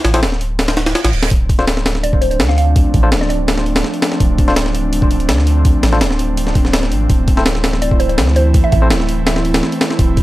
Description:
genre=drum and bass, jungle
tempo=166 BPM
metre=4/4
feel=straight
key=D minor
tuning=A4 = 440 Hz
part: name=soft dub sub bass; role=bass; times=0.0-10.2 s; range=D1 to D2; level=-16 LUFS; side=equal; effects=none
part: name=breakbeat sampler-style drum kit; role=drums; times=0.0-10.2 s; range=hi-hat, kick drum, snare drum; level=-15 LUFS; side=equal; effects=none
part: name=barky tine electric piano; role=stabs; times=0.1-8.9 s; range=C4 to C5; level=-23 LUFS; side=left 3 dB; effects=overdrive, low-pass filter, dub echo
part: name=reverse cymbal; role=sound effects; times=0.8-1.3 s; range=none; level=-26 LUFS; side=right 8 dB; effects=none
part: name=airy breathy pad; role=sustained chords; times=1.8-10.2 s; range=E3 to E4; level=-20 LUFS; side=right 1 dB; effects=chorus
part: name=mallet-like synth pluck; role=melody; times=2.0-3.4, 7.8-9.8 s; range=C5 to F5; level=-21 LUFS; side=right 1 dB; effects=chorus, phaser, dub echo
room=little or no reverb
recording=dry, gritty hardware recording, transformer saturation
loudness=-12 LUFS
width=side -16 dB against mid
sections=0.0-10.2 A section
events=reverse cymbal 0.8-1.3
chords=0.0 N.C.; 1.3 Dm7; 7.1 Am/D

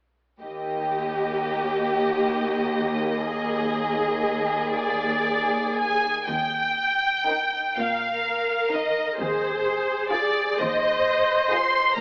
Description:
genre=classical, slow romantic movement for string orchestra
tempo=36-45 BPM (dotted quarters)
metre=6/8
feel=rubato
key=Eb major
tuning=A4 = 440 Hz
part: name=rich symphonic violin section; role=melody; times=0.4-12.0 s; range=C5 to C6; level=-27 LUFS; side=equal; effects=none
part: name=warm symphonic violin section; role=second line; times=0.4-11.9 s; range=Eb4 to Bb4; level=-29 LUFS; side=equal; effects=none
part: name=warm symphonic viola section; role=accompaniment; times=0.4-12.0 s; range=Bb3 to C5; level=-30 LUFS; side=equal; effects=none
part: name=rich symphonic cello section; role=bass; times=0.4-12.0 s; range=Eb2 to Bb2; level=-35 LUFS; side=equal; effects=none
room=wet concert hall reverb, RT60 2.3 s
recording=AM radio sound, faint mains hum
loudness=-24 LUFS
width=mono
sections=0.4-6.3 A section; 6.3-12.0 B section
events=none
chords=0.4 Eb; 9.2 Fm7/Eb

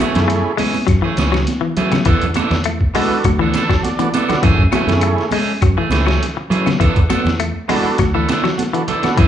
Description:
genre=afrobeat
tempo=101 BPM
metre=4/4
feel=straight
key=unclear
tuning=A4 = 442 Hz
part: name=overdriven combo organ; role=accompaniment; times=0.0-9.2 s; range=A3 to A5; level=-21 LUFS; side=right 4 dB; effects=none
part: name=clean electric guitar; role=arpeggios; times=0.0-9.3 s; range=C#3 to A3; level=-21 LUFS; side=left 6 dB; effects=none
part: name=electric guitar at the edge of break-up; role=stabs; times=0.0-9.3 s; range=E3 to A4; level=-20 LUFS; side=right 3 dB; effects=none
part: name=fingered electric bass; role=bass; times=0.0-9.3 s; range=C#2 to F#3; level=-19 LUFS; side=equal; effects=none
part: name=trip hop sampler-style drum kit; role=drums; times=0.0-9.3 s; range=hi-hat, kick drum, snare drum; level=-19 LUFS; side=equal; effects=none
part: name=claves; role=percussion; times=0.0-9.2 s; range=none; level=-32 LUFS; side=left 4 dB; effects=none
part: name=congas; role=percussion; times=0.1-9.2 s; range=none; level=-23 LUFS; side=right 2 dB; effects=none
room=wet large studio reverb, RT60 0.9 s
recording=band playing live in one room, nothing above 11.0 kHz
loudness=-14 LUFS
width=side -10 dB against mid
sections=0.0-9.3 A section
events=transistor combo organ fill 3.2-4.4; drum fill 4.0-4.4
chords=0.0 F#m9; 2.1 E7sus4; 4.4 F#m9; 6.8 E7sus4

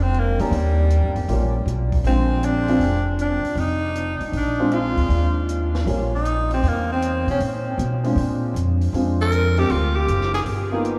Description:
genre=jazz, small-group swing and bop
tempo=157 BPM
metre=4/4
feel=swing 66% on 8ths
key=Bb mixolydian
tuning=A4 = 438 Hz
part: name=growling tenor saxophone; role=melody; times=0.0-10.4 s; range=G3 to Bb4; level=-26 LUFS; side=equal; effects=diffuse ambient delay
part: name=upright bass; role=bass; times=0.0-11.0 s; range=F1 to B2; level=-24 LUFS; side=equal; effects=none
part: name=compact cocktail drum kit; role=drums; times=0.1-11.0 s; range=hi-hat, kick drum, snare drum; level=-38 LUFS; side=equal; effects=none
part: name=dark concert grand piano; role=accompaniment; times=0.4-11.0 s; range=G3 to G4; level=-28 LUFS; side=equal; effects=subtle chorus
room=wet cathedral reverb, RT60 6.3 s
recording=dreamy mix soaked in reverb, small room reverb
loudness=-21 LUFS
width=mono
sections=0.0-11.0 A section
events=none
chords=0.0 Bb; 0.5 Eb7; 2.0 Bb7; 3.6 Ebsus2/F; 4.3 Bb7; 5.1 Eb7; 6.6 E5; 8.2 Bb7; 9.7 Dadd11; 10.5 G7alt

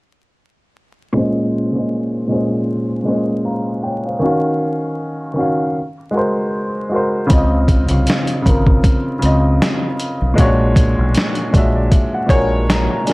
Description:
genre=lo-fi hip hop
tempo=78 BPM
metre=4/4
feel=swing 56% on 16ths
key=Bb minor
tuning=A4 = 440 Hz
part: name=warm upright piano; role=accompaniment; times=1.1-13.1 s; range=Bb2 to Bb5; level=-17 LUFS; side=equal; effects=low-pass filter
part: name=deep dub fingered electric bass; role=bass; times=7.3-12.9 s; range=Ab1 to Db2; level=-17 LUFS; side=equal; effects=tube saturation
part: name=dusty soul sampler-style drum kit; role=drums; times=7.3-13.1 s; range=hi-hat, kick drum, snare drum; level=-15 LUFS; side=equal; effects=none
part: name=bright upright piano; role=melody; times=12.3-13.1 s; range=C#5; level=-20 LUFS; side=left 1 dB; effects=low-pass filter
room=little or no reverb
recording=dry, gritty hardware recording, vinyl crackle, lossy compression artefacts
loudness=-14 LUFS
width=side -24 dB against mid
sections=1.1-13.1 A section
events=filter sweep on upright piano 1.1-13.1; upright piano fill 11.1-13.1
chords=1.1 Bbm11; 4.2 Ebm9; 5.8 Ab9; 7.3 Dbmaj9; 10.4 Bb7alt

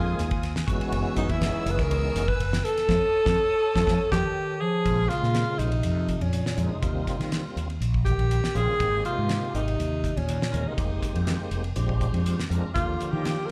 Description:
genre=electric jazz fusion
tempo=122 BPM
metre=4/4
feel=straight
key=Bb dorian from 4.9 s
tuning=A4 = 440 Hz
part: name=clear alto saxophone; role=melody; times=0.0-13.5 s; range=Db4 to Cb5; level=-30 LUFS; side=equal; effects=slapback echo
part: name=tonewheel organ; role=accompaniment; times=0.0-13.5 s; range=C3 to Bb4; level=-35 LUFS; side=equal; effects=chorus vibrato, slow rotary speaker, slapback echo
part: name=warm studio string section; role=sustained chords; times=0.0-4.8 s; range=Cb4 to Fb6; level=-40 LUFS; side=equal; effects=none
part: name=mellow fretless electric bass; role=bass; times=0.0-13.3 s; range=F1 to Eb3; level=-29 LUFS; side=equal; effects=lush chorus
part: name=damped 70s drum kit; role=drums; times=0.2-13.4 s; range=hi-hat, kick drum, ride cymbal, snare drum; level=-34 LUFS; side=equal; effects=none
part: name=mellow bass clarinet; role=second line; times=4.1-13.5 s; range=Bb2 to F3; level=-34 LUFS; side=equal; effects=slapback echo
room=light reverb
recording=live gig heard through the venue's PA, club reverb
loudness=-26 LUFS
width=mono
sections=0.0-4.9 A section; 4.9-13.5 B section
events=band accent 2.9-4.9; drum fill 4.4-4.9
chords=0.0 Bb9sus4; 0.7 Gb9sus4; 2.9 F7b13; 4.9 Bbm9; 6.8 Eb13; 8.8 Abmaj9; 10.8 Fm11; 11.8 Bb13; 12.7 Ebmaj9

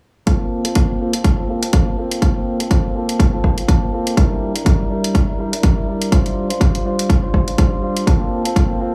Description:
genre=filtered disco house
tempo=123 BPM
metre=4/4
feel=swing 56% on 16ths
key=unclear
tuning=A4 = 440 Hz
part: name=direct-recorded clean electric guitar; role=riff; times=0.3-8.9 s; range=G3 to C5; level=-24 LUFS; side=equal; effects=sidechain pumping, low-pass filter, tape echo
part: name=electronic hi-hat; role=drums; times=0.3-8.7 s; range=none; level=-28 LUFS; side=equal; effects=overdrive, sidechain pumping on hats
part: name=electronic kick drum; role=drums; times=0.3-8.7 s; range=none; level=-18 LUFS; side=equal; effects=overdrive
room=light reverb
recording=echo-heavy mix, small room ambience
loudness=-17 LUFS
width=mono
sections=0.3-8.9 A section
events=filter sweep on clean electric guitar 0.3-8.9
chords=0.3 Fadd11/Bb; 4.2 Gm6; 6.1 G7sus4; 8.1 Fadd11/Bb

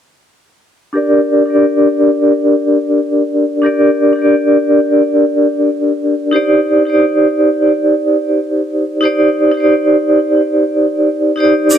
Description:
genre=trip hop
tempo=89 BPM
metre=4/4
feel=swing 57% on 16ths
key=G minor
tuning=A4 = 440 Hz
part: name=vibraphone with hard mallets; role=accompaniment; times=0.9-11.8 s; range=D4 to D5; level=-10 LUFS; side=equal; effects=tremolo, low-pass filter, tape echo
part: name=egg shaker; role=percussion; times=11.7-11.8 s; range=none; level=-15 LUFS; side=right 3 dB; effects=none
room=light reverb, studio reverb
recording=dark, warm production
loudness=-10 LUFS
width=side -9 dB against mid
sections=0.9-11.8 A section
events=filter sweep on vibraphone 0.9-11.8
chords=0.9 Gm; 6.3 Cmadd9

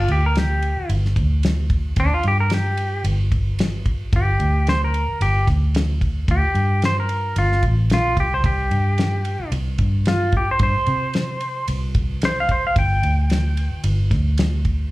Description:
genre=straight-eighth soul blues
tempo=111 BPM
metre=4/4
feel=swing 53% on 16ths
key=G minor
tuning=A4 = 441 Hz
part: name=clean lap steel guitar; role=melody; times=0.0-13.8 s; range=D4 to G5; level=-22 LUFS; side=equal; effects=slapback echo
part: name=vintage muted fingered electric bass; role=bass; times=0.0-14.9 s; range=G1 to C3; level=-20 LUFS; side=equal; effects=none
part: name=damped 70s drum kit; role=drums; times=0.1-14.8 s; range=kick drum, ride cymbal, snare drum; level=-24 LUFS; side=equal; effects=none
room=light reverb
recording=live gig heard through the venue's PA, club ambience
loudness=-17 LUFS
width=side -18 dB against mid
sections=0.0-14.9 A section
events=electric slide guitar solo 0.0-14.9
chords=0.0 G5; 8.4 C5; 12.8 G5

